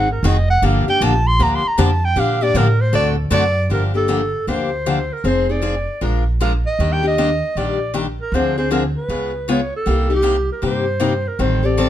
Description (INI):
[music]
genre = acoustic string swing (jazz manouche)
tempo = 156 BPM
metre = 4/4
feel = swing 64% on 8ths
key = G minor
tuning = A4 = 439 Hz
[part]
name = clear clarinet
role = melody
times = 0.0-11.9 s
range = G4 to C6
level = -20 LUFS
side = right 1 dB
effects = plate reverb
[part]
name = picked acoustic archtop guitar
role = accompaniment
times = 0.0-11.9 s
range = C3 to Bb4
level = -20 LUFS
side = left 4 dB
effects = none
[part]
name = upright bass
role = bass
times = 0.0-11.9 s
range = F1 to Bb2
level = -20 LUFS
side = right 1 dB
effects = none
[sound]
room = light reverb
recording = dark, warm production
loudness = -15 LUFS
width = side -11 dB against mid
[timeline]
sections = 0.0-3.7 A section; 3.7-11.9 B section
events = clarinet solo 0.0-3.7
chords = 0.0 Ab7; 0.6 Gm9; 2.9 D7; 3.7 Gm9; 5.2 Fm7; 6.0 Bb7; 6.8 Ebmaj7; 8.3 Dm7b5; 9.1 C#7; 9.9 Cm7